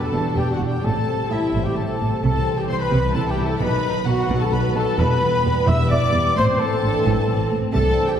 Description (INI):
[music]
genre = cinematic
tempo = 130 BPM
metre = 3/4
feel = straight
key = unclear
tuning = A4 = 439 Hz
[part]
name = rich symphonic violin section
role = melody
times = 0.0-8.2 s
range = E5 to E6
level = -31 LUFS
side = left 4 dB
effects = none
[part]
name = mellow cor anglais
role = second line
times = 0.0-8.2 s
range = E4 to E5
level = -31 LUFS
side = equal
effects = none
[part]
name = rich studio violin section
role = second line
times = 0.0-8.2 s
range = B3 to E4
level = -31 LUFS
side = left 3 dB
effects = none
[part]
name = small flute group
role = second line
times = 0.0-8.2 s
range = E5 to E6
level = -30 LUFS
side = left 2 dB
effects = none
[part]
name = rich symphonic viola section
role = accompaniment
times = 0.0-8.1 s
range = E4 to E5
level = -29 LUFS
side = right 2 dB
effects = none
[part]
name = dark trombone section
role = sustained chords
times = 0.0-8.2 s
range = B2 to C4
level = -28 LUFS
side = right 1 dB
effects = none
[part]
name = warm French horn section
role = sustained chords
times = 0.0-8.2 s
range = E4 to E5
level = -26 LUFS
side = left 3 dB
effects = none
[part]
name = mellow trumpet section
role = stabs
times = 0.0-8.1 s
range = E4 to E5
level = -28 LUFS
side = right 1 dB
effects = none
[part]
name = dark symphonic double bass section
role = bass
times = 0.1-7.8 s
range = E1 to C2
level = -24 LUFS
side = right 1 dB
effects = none
[part]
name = rich symphonic cello section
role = bass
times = 0.1-7.8 s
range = E2 to C3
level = -24 LUFS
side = right 1 dB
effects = none
[sound]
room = wet concert hall reverb, RT60 1.8 s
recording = heard from further back in the room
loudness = -18 LUFS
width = side -9 dB against mid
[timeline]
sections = 0.0-8.2 A section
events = none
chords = 0.0 Em; 0.8 Am; 2.2 C; 3.6 B; 5.0 Em; 6.4 Am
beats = 0.37 | 0.84 1.31 1.77 | 2.23 2.69 3.15 | 3.61 4.07 4.53 | 4.99 5.45 5.91 | 6.37 6.83 7.28 | 7.74